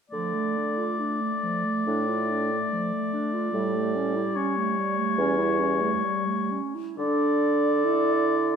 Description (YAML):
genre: classical, slow romantic movement for wind quintet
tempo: 62-73 BPM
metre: 4/4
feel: rubato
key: D minor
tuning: A4 = 440 Hz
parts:
  - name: warm oboe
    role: second line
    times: 0.1-8.6 s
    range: C#5 to D5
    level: -28 LUFS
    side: left 5 dB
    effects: none
  - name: dark French horn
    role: accompaniment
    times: 0.1-8.6 s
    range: G3 to E4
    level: -29 LUFS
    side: left 1 dB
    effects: none
  - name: mellow clarinet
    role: accompaniment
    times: 0.1-8.5 s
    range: F3 to A4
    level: -30 LUFS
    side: right 7 dB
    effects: none
  - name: dark bassoon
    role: bass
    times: 0.1-8.6 s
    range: E2 to D3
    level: -28 LUFS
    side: right 4 dB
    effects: none
  - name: mellow hollow concert flute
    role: melody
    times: 7.0-8.6 s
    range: D5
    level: -30 LUFS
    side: left 9 dB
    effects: none
room: wet recital hall reverb, RT60 1.4 s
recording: minimal, uncompressed stereo recording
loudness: -23 LUFS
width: side -7 dB against mid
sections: 0.1-7.0 A section; 7.0-8.6 B section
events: none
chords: 0.1 Dm; 3.5 A7; 7.0 D5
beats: | 0.12 1.00 1.86 2.71 | 3.54 4.37 5.19 6.05 | 6.98 7.85